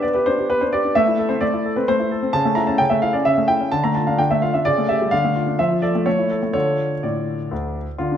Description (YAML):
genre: classical-period piano sonatina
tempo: 129 BPM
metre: 3/4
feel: straight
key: D minor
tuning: A4 = 440 Hz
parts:
  - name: clear grand piano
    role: solo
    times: 0.0-8.2 s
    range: D2 to Bb5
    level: -17 LUFS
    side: equal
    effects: none
room: wet recital hall reverb, RT60 1.6 s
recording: none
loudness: -17 LUFS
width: side -9 dB against mid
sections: 0.0-8.0 A section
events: none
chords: 0.0 G/B; 1.0 Am; 2.3 A/C#; 3.7 Dm; 4.7 A7/C#; 5.1 Dm; 5.6 Dm/F; 6.1 A; 6.5 Dm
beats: 0.03 0.49 | 0.96 1.42 1.88 | 2.34 2.80 3.26 | 3.72 4.19 4.65 | 5.12 5.59 6.07 | 6.55 7.03 7.51 | 8.00